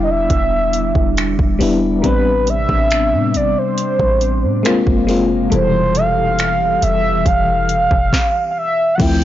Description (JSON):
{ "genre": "contemporary R&B", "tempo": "69 BPM", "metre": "4/4", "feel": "straight", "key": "unclear", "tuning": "A4 = 441 Hz", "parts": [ { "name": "mellow horn-like synth lead", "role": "melody", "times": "0.0-9.2 s", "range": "Bb4 to G5", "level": "-17 LUFS", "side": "right 1 dB", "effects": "chorus" }, { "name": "FM electric piano with tremolo", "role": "accompaniment", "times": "0.0-9.2 s", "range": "B2 to A4", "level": "-18 LUFS", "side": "left 4 dB", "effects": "none" }, { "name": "glassy FM pad", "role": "sustained chords", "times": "0.0-9.2 s", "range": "B2 to G4", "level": "-26 LUFS", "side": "right 2 dB", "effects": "ensemble chorus, built-in reverb" }, { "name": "clean 808-style bass", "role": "bass", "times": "0.0-9.2 s", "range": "E1 to A2", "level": "-20 LUFS", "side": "right 1 dB", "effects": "none" }, { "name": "smooth R&B drum kit", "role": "drums", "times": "0.3-9.2 s", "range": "crash cymbal, finger snaps, hi-hat, kick drum, snare drum", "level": "-19 LUFS", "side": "equal", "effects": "overdrive" }, { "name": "small celesta", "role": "texture", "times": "1.6-5.9 s", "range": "G4 to A#4", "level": "-29 LUFS", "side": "right 4 dB", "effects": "none" } ], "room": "digital ambience", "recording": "blown-out, overdriven recording, overdrive, nothing above 7.5 kHz", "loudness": "-13 LUFS", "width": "side -12 dB against mid", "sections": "0.0-9.0 A section", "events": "none", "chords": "0.0 Em7; 2.0 Am11; 4.7 F#maj9#11; 5.5 Fmaj9#11" }